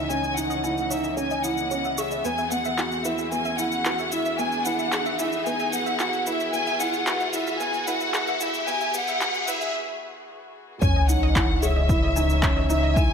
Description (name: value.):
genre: piano and strings electronica.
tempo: 112 BPM.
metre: 4/4.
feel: straight.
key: unclear.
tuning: A4 = 440 Hz.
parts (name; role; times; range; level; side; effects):
warm studio violin section; melody; 0.0-13.1 s; E5 to G#5; -26 LUFS; left 1 dB; none.
dark string quartet; sustained chords; 0.0-13.1 s; C#3 to D#5; -36 LUFS; left 1 dB; sidechain pumping.
felt-muted upright piano; riff; 0.0-13.1 s; B3 to G#4; -29 LUFS; right 2 dB; digital delay.
round analog bass; bass; 0.0-13.1 s; C#2 to E2; -28 LUFS; equal; sidechain pumping.
riser and sub drop; sound effects; 0.0-13.0 s; none; -32 LUFS; equal; none.
wide unison pluck; arpeggios; 0.1-13.0 s; B4 to D#6; -36 LUFS; right 4 dB; sidechain pumping, digital delay.
electronic shaker and handclaps; drums; 0.1-13.1 s; none; -31 LUFS; equal; overdrive, high-pass filter on perc, high-pass filter on snare.
electronic kick drum; drums; 10.8-13.1 s; none; -23 LUFS; equal; overdrive.
room: moderate lush hall reverb, RT60 1.9 s, small room ambience.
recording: high-pass filter.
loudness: -22 LUFS.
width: side -7 dB against mid.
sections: 0.0-10.8 A section; 10.8-13.1 B section.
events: build-up 0.0-10.8; riser 0.0-9.7; filter sweep on synth arpeggio sound 0.0-10.8; filter sweep 0.0-10.8; break 9.7-10.8; drop 10.8-13.1; impact 10.8-13.0.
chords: 0.0 C#madd9; 2.2 Eadd9; 10.8 C#madd9.